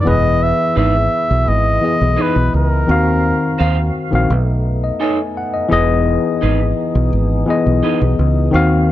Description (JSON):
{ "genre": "soul", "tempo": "85 BPM", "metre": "4/4", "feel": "straight", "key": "unclear", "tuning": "A4 = 440 Hz", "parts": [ { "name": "warm flugelhorn", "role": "melody", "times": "0.0-3.9 s", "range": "Bb4 to E5", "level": "-18 LUFS", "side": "equal", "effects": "none" }, { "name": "tine electric piano", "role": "accompaniment", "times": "0.0-8.9 s", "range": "Eb3 to Ab5", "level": "-18 LUFS", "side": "left 3 dB", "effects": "none" }, { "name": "tonewheel organ", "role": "sustained chords", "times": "0.0-8.9 s", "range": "Eb3 to F5", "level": "-25 LUFS", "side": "right 1 dB", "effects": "overdrive, chorus vibrato, slow rotary speaker" }, { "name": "fingered electric bass", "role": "bass", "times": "0.1-8.9 s", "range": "E1 to Eb2", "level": "-16 LUFS", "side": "equal", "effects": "none" }, { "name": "electric guitar through a small old amp", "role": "riff", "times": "0.8-8.0 s", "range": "D#4 to F5", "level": "-23 LUFS", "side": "right 5 dB", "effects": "none" } ], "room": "small room ambience", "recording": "dark, warm production", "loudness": "-13 LUFS", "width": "side -13 dB against mid", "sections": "0.1-8.9 A section", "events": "none", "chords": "0.1 Emaj7; 2.9 Ebm69; 4.3 B9; 5.7 Emaj7" }